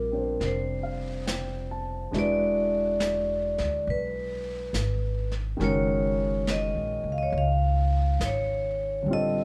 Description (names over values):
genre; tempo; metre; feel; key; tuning
jazz ballad; 69 BPM; 4/4; swing 68% on 8ths; unclear; A4 = 440 Hz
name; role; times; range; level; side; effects
vibraphone with medium hard mallets; melody; 0.0-9.4 s; Bb4 to F5; -30 LUFS; equal; none
warm concert grand piano; accompaniment; 0.0-9.4 s; D3 to A5; -34 LUFS; equal; none
upright bass; bass; 0.0-9.4 s; E1 to D2; -32 LUFS; equal; none
vintage brush drum kit; drums; 0.4-9.4 s; brushed snare drum, hi-hat, snare drum; -38 LUFS; equal; none
room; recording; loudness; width
light reverb; none; -27 LUFS; mono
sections
0.0-9.4 A section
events
none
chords
0.0 Bbadd9; 2.1 E9; 5.6 Gb69